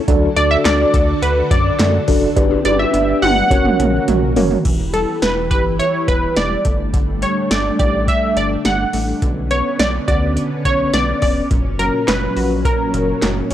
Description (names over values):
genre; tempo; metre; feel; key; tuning
synth-pop; 105 BPM; 4/4; straight; unclear; A4 = 440 Hz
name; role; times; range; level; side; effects
string machine, full ensemble; sustained chords; 0.0-13.5 s; A#2 to B4; -22 LUFS; equal; ensemble chorus
mellow tine electric piano; accompaniment; 0.1-4.6 s; C#4 to D5; -18 LUFS; equal; medium stereo tremolo
analog pluck; arpeggios; 0.1-13.5 s; A#2 to F#5; -28 LUFS; right 1 dB; chorus, analog delay
round analog bass; bass; 0.1-13.5 s; E1 to F#2; -22 LUFS; equal; none
electro analog drum machine; drums; 0.1-13.5 s; crash cymbal, handclaps, hi-hat, kick drum, snare drum, toms; -19 LUFS; equal; overdrive
funky polysynth comp; melody; 0.4-13.5 s; A4 to F#5; -18 LUFS; equal; chorus
room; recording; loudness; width
light reverb; dry, gritty hardware recording, cassette tape; -14 LUFS; side -11 dB against mid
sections
0.0-4.7 A section; 4.7-13.5 B section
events
drum fill 2.4-4.7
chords
0.1 D; 2.4 G; 3.5 F#; 4.7 Em; 6.7 Gsus2; 9.2 Bmadd9; 11.5 F#